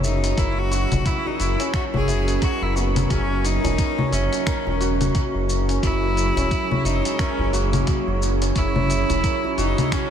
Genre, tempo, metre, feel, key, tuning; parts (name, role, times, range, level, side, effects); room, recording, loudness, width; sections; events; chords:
organic downtempo; 88 BPM; 4/4; swing 59% on 16ths; F# mixolydian; A4 = 440 Hz
bright cello; melody; 0.0-10.1 s; A#3 to G#4; -26 LUFS; equal; tape echo
warbly tape-like pad; sustained chords; 0.0-10.1 s; F#3 to A#4; -27 LUFS; right 2 dB; chorus, built-in reverb, sidechain pumping
santur; arpeggios; 0.0-10.1 s; C#4 to E5; -28 LUFS; equal; tape echo
round analog bass; bass; 0.0-9.7 s; E1 to F#1; -23 LUFS; equal; sidechain pumping
dusty soul sampler-style drum kit; drums; 0.0-10.1 s; congas, finger snaps, hi-hat, shaker; -27 LUFS; left 3 dB
electronic kick drum; drums; 0.4-10.1 s; -24 LUFS; equal
djembe; percussion; 0.9-9.9 s; -34 LUFS; left 1 dB
wind-like tuned noise texture; texture; 7.0-10.1 s; C#5; -35 LUFS; right 6 dB
moderate huge ambient reverb, RT60 8.7 s; dreamy mix soaked in reverb; -19 LUFS; side -8 dB against mid
0.0-10.1 A section
0.0 F#7